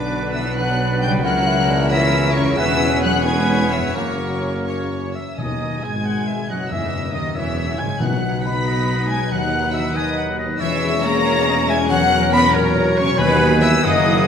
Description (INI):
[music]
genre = classical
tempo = 83-95 BPM (dotted quarters)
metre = 6/8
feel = rubato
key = B major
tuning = A4 = 442 Hz
[part]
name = warm symphonic violin section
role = melody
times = 0.0-14.3 s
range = A#5 to B6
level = -27 LUFS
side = left 1 dB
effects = none
[part]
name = bright clarinet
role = second line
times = 0.0-14.3 s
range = C#4 to G#5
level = -28 LUFS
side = equal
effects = none
[part]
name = clear oboe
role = second line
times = 0.0-14.3 s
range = A#4 to B5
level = -28 LUFS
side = right 2 dB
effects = none
[part]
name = clear symphonic violin section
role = second line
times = 0.0-14.3 s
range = F#4 to B5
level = -28 LUFS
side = left 2 dB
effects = none
[part]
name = hollow concert flute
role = second line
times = 0.0-14.3 s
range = A#4 to B5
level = -26 LUFS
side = left 3 dB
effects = none
[part]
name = clear symphonic viola section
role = accompaniment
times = 0.0-14.3 s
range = D#3 to B4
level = -30 LUFS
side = equal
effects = none
[part]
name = mellow French horn section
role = sustained chords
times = 0.0-14.3 s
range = D#3 to D#4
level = -27 LUFS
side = left 2 dB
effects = none
[part]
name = concert harp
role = arpeggios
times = 0.0-14.3 s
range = E2 to C#6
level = -25 LUFS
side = left 7 dB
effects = none
[part]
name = clear trumpet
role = stabs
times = 0.0-14.3 s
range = G#4 to G#5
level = -28 LUFS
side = right 1 dB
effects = none
[part]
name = clear symphonic double bass section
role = bass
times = 0.0-14.3 s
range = B1 to G#2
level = -27 LUFS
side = right 2 dB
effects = none
[part]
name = dark tuba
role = bass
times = 0.0-14.3 s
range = E1 to D#2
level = -26 LUFS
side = right 3 dB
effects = none
[part]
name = rich symphonic cello section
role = bass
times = 0.0-14.3 s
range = A#2 to B3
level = -26 LUFS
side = right 2 dB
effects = none
[part]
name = warm bassoon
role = accompaniment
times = 0.6-5.0 s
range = A#3 to F#4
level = -27 LUFS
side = right 2 dB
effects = none
[part]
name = timpani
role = percussion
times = 5.4-8.6 s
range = F#2 to B2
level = -28 LUFS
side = left 2 dB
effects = none
[sound]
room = wet scoring stage reverb, RT60 1.8 s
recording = none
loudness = -16 LUFS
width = side -7 dB against mid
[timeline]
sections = 0.0-5.4 A section; 5.4-14.3 B section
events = none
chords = 0.0 Bm; 1.2 F#7/C#; 2.6 C#m7/E; 4.0 F#; 5.4 B; 6.7 F#7/E; 8.0 B; 9.3 B/D#; 10.6 C#m/E; 11.9 F#7/E; 13.2 B/D#